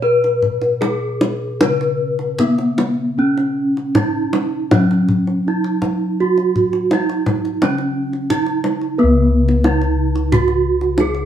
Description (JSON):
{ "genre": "Javanese gamelan", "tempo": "76-90 BPM", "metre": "4/4", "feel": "straight", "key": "C# slendro", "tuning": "A4 = 440 Hz", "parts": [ { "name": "gamelan-type bronze metallophone", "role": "melody", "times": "0.0-11.3 s", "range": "B3-40c to B4-40c", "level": "-18 LUFS", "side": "right 1 dB", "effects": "none" }, { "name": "gamelan-type bossed gongs", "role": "bass", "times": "0.0-11.3 s", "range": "C#2 to B4-40c", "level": "-20 LUFS", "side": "left 1 dB", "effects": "none" }, { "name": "kendang", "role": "percussion", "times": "0.2-11.2 s", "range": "none", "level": "-20 LUFS", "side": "left 1 dB", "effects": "none" } ], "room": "moderate large studio reverb, RT60 0.9 s", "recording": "band playing live in one room", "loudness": "-15 LUFS", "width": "side -10 dB against mid", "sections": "0.0-9.0 A section; 9.0-11.3 B section", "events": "none", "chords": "none" }